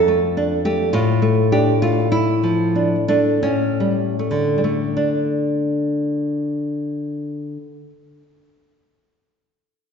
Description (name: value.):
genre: classical.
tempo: 38-54 BPM.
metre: 3/4.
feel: rubato.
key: D minor.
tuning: A4 = 439 Hz.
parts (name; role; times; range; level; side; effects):
nylon-string guitar; accompaniment; 0.0-8.2 s; F2 to A4; -17 LUFS; equal; none.
room: wet scoring stage reverb, RT60 1.5 s.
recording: recorded in a church or concert hall, nothing above 7.6 kHz.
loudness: -17 LUFS.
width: side -6 dB against mid.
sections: 0.0-5.0 A section; 5.0-9.5 B section.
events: slowing down 0.0-5.0.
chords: 0.0 Dm/F; 0.9 Dm/A; 3.4 A7; 5.0 D5.